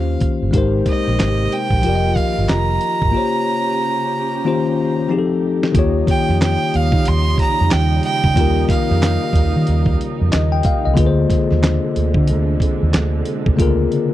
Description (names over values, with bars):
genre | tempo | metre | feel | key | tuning
R&B, neo-soul | 92 BPM | 4/4 | swing 62% on 16ths | unclear | A4 = 440 Hz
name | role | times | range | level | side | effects
clear fiddle | melody | 0.0-10.0 s | Eb5 to C6 | -22 LUFS | right 3 dB | none
bell-like tine electric piano | accompaniment | 0.0-14.1 s | Db3 to G5 | -20 LUFS | left 5 dB | none
vintage muted fingered electric bass | bass | 0.0-13.9 s | F1 to Eb3 | -17 LUFS | right 1 dB | none
dusty soul sampler-style drum kit | drums | 0.2-14.1 s | handclaps, hi-hat, kick drum, snare drum | -19 LUFS | right 1 dB | none
warm studio string section | sustained chords | 0.5-14.1 s | Eb2 to G4 | -27 LUFS | right 6 dB | none
room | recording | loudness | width
little or no reverb | dry, close 1970s-style studio recording, faint mains hum | -14 LUFS | side -14 dB against mid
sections
0.0-5.7 A section; 5.7-14.1 B section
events
drum fill 4.4-5.7, 13.6-14.1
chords
0.0 Eb13; 0.5 Abmaj9; 1.8 F7sus4; 3.1 Bbm69; 4.4 Eb13; 5.1 F9; 5.7 Eb7; 11.0 Bb9